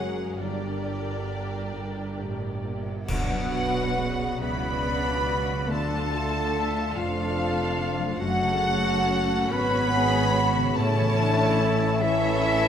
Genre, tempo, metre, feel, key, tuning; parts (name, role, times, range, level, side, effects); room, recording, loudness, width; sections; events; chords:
cinematic, emotional film score for orchestra; 44-49 BPM (dotted quarters); 6/8; rubato; A4 = 440 Hz
muted symphonic violin section; melody; 0.0-12.7 s; D5 to B5; -31 LUFS; left 3 dB
muted studio violin section; second line; 0.0-12.7 s; D4 to D5; -33 LUFS; equal
muted studio viola section; accompaniment; 0.0-12.7 s; C#3 to E5; -33 LUFS; right 2 dB
dark French horn section; sustained chords; 0.0-12.7 s; D3 to B3; -31 LUFS; left 2 dB
concert harp; arpeggios; 0.0-12.7 s; F#2 to C#6; -32 LUFS; left 6 dB
muted studio cello section; bass; 0.0-12.7 s; F2 to D3; -32 LUFS; right 3 dB
muted studio double bass section; bass; 0.0-12.7 s; F1 to D2; -33 LUFS; right 3 dB
cymbal swell, clash cymbals and concert bass drum; percussion; 0.4-4.8 s; -35 LUFS; equal
bright flute section; second line; 3.1-12.7 s; E5 to B5; -31 LUFS; equal
clear clarinet; second line; 3.1-12.7 s; E4 to B4; -32 LUFS; right 2 dB
wet scoring stage reverb, RT60 1.9 s; -23 LUFS; side -8 dB against mid
0.0-3.1 A section; 3.1-12.7 B section
band accent 3.1-4.0
0.4 Gm; 3.1 Bm; 5.7 Dmadd9; 8.2 F#m; 10.8 A